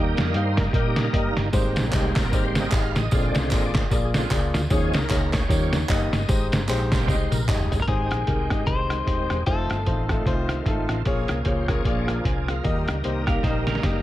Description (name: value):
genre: uptempo gospel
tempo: 151 BPM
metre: 4/4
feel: swing 59% on 8ths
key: Ab major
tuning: A4 = 440 Hz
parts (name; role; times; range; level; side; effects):
- clear concert grand piano; accompaniment; 0.0-14.0 s; Ab2 to Ab5; -28 LUFS; left 2 dB; none
- bright tonewheel organ; sustained chords; 0.0-14.0 s; D3 to G5; -30 LUFS; right 2 dB; slow rotary speaker, overdrive, chorus vibrato
- hollow-body short-scale fingered electric bass; bass; 0.0-14.0 s; Eb1 to Bb2; -27 LUFS; equal; none
- lo-fi sampler-style drum kit; drums; 0.2-13.9 s; hi-hat, kick drum, rim click, snare drum, toms; -24 LUFS; equal; none
- tambourine and handclaps; percussion; 1.5-7.8 s; none; -32 LUFS; right 2 dB; none
- clean electric guitar; melody; 7.8-10.9 s; Ab4 to C5; -29 LUFS; left 4 dB; spring reverb
- clean electric guitar; second line; 13.3-14.0 s; G4 to C5; -33 LUFS; right 8 dB; spring reverb
room: little or no reverb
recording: none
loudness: -20 LUFS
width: side -14 dB against mid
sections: 0.0-7.9 A section; 7.9-14.0 B section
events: tonewheel organ solo 0.0-7.9; drum fill 7.1-7.9, 13.4-14.0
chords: 0.0 Eb; 1.5 Abmaj7; 3.1 Bb7; 4.7 Eb7sus4; 5.5 Eb7; 6.3 Abmaj7; 9.5 F7; 11.1 Bbm7; 11.9 Bb7; 12.6 Eb